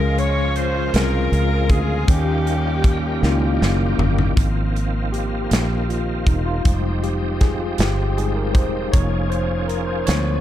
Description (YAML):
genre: slow gospel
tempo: 52 BPM (dotted quarters)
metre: 6/8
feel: straight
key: Ab major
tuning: A4 = 440 Hz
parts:
  - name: breathy alto saxophone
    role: melody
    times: 0.0-3.6 s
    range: G4 to Db5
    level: -28 LUFS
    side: right 4 dB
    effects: tape echo
  - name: clear saxophone section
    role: melody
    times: 0.0-3.6 s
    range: Bb3 to Db5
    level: -27 LUFS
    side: left 4 dB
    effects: tape echo
  - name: tine electric piano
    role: accompaniment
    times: 0.0-10.4 s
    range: Db3 to Db5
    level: -24 LUFS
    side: left 2 dB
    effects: medium stereo tremolo, tape echo
  - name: bright tonewheel organ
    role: sustained chords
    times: 0.0-10.4 s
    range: Eb3 to Bb4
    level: -28 LUFS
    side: right 3 dB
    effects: slow rotary speaker, chorus vibrato
  - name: fingered electric bass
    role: bass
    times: 0.0-10.4 s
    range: Fb1 to Eb2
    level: -21 LUFS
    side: equal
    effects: none
  - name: modern studio drum kit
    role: drums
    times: 0.2-10.3 s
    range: hi-hat, kick drum, snare drum, toms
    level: -20 LUFS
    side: equal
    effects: none
room: light reverb, studio ambience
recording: echo-heavy mix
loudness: -17 LUFS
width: side -12 dB against mid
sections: 0.0-4.4 A section; 4.4-10.4 B section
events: drum fill 3.2-4.4; tine electric piano solo 4.4-10.4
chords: 0.0 Dbmaj7; 2.1 Eb7; 4.4 Ab69; 8.9 Db6/F